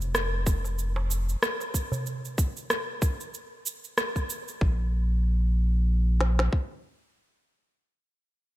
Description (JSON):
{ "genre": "organic downtempo", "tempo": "94 BPM", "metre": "4/4", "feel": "swing 57% on 16ths", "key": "unclear", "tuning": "A4 = 440 Hz", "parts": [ { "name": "round analog bass", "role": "bass", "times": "0.0-6.5 s", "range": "F1 to Bb1", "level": "-24 LUFS", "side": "equal", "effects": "sidechain pumping" }, { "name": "electronic cabasa and rim click", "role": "drums", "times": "0.0-4.6 s", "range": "none", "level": "-30 LUFS", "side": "equal", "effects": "none" }, { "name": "organic electronic drum kit", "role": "drums", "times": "0.5-6.7 s", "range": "kick drum, snare drum", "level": "-27 LUFS", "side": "equal", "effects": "none" }, { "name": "darbuka", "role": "percussion", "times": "0.6-2.0 s", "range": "none", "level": "-36 LUFS", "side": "right 2 dB", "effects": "none" } ], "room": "light reverb", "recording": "bright 1980s-style digital production", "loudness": "-25 LUFS", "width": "side -16 dB against mid", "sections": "0.0-4.6 A section; 4.6-7.2 B section", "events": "none", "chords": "none" }